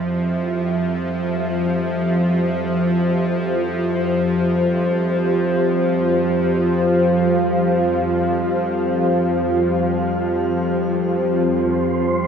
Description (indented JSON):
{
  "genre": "dark ambient drone",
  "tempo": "free time",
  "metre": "none",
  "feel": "none",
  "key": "unclear",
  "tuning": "A4 = 440 Hz",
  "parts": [
    { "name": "deep dark ambient pad", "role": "sustained chords", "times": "0.0-12.3 s", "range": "F4 to F5", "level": "-20 LUFS", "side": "equal", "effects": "chorus, built-in reverb, shimmer reverb" },
    { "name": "bowed-like drone", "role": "drone", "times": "0.0-12.3 s", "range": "F2 to F3", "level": "-20 LUFS", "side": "equal", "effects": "built-in reverb" },
    { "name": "wind-like tuned noise texture", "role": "texture", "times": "11.6-12.3 s", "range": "C4 to C5", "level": "-24 LUFS", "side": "right 1 dB", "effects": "built-in reverb" }
  ],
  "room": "wet huge ambient reverb, RT60 8.7 s",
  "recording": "cassette tape",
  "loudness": "-17 LUFS",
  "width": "side -7 dB against mid",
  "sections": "0.0-11.5 A section",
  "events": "fade-in on synth drone 0.0-11.5; fade-in on ambient pad 0.0-11.5",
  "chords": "0.0 F5"
}